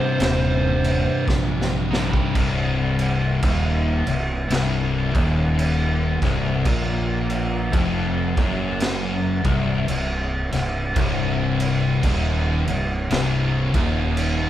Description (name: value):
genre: stoner and doom metal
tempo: 56 BPM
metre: 4/4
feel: swing 60% on 8ths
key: C minor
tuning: A4 = 439 Hz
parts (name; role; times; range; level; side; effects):
- fuzz lead guitar; melody; 0.0-1.2 s; C5; -25 LUFS; right 2 dB; distortion
- overdriven semi-hollow guitar; riff; 0.0-14.5 s; C2 to Eb4; -27 LUFS; equal; none
- thick fuzz guitar; riff; 0.0-14.5 s; C2 to C3; -25 LUFS; left 6 dB; distortion
- thick fuzz guitar; riff; 0.0-2.3, 11.0-14.5 s; C2 to C3; -28 LUFS; right 5 dB; distortion
- fuzz fingered electric bass; bass; 0.2-14.5 s; C1 to Bb1; -25 LUFS; right 1 dB; overdrive
- raw garage drum kit; drums; 0.2-14.5 s; crash cymbal, kick drum, snare drum; -24 LUFS; right 1 dB; none
room: moderate large studio reverb, RT60 1.2 s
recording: band playing live in one room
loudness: -19 LUFS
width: side -12 dB against mid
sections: 0.0-2.4 A section; 2.4-14.5 B section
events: drum fill 1.3-2.4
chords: 0.0 Cm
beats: 0.20 1.28 | 2.35 3.43 4.51 5.58 | 6.66 7.73 8.80 9.88 | 10.95 12.02 13.10 14.17